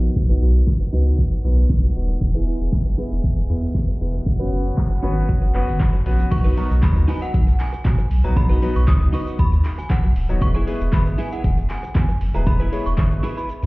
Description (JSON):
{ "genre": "dance-pop", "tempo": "117 BPM", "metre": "4/4", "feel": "straight", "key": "B major", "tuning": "A4 = 440 Hz", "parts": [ { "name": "clear concert grand piano", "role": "accompaniment", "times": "0.0-13.7 s", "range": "F#3 to B5", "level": "-29 LUFS", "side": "left 2 dB", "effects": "sidechain pumping" }, { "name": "mellow accordion", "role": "sustained chords", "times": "0.0-6.3 s", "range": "C#3 to G#4", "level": "-34 LUFS", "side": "right 1 dB", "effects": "sidechain pumping" }, { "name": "twelve-string electric guitar", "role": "riff", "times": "0.0-13.7 s", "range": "C#4 to B4", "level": "-31 LUFS", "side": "right 2 dB", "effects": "wide subtle chorus" }, { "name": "warm sub bass", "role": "bass", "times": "0.0-13.7 s", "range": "D1 to B2", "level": "-18 LUFS", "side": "equal", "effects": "sidechain pumping" }, { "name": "deep house drum kit", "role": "drums", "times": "0.2-13.7 s", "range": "crash cymbal, handclaps, hi-hat, kick drum, shaker, snare drum", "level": "-20 LUFS", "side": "equal", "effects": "none" }, { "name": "synth chime", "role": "melody", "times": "6.3-13.7 s", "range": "F#5 to D#6", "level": "-31 LUFS", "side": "right 1 dB", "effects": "ensemble chorus, phaser, tremolo, tape echo" } ], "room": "digital ambience", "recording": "heard muffled through a wall, club reverb, EQ, low-pass filter", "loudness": "-17 LUFS", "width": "side -22 dB against mid", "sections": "0.0-6.3 A section; 6.3-13.7 B section", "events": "filter sweep 0.0-6.3; grand piano fill 5.3-6.3; kick muted 13.5", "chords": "0.0 B; 2.2 E; 4.3 F#sus4; 6.3 B; 10.4 E" }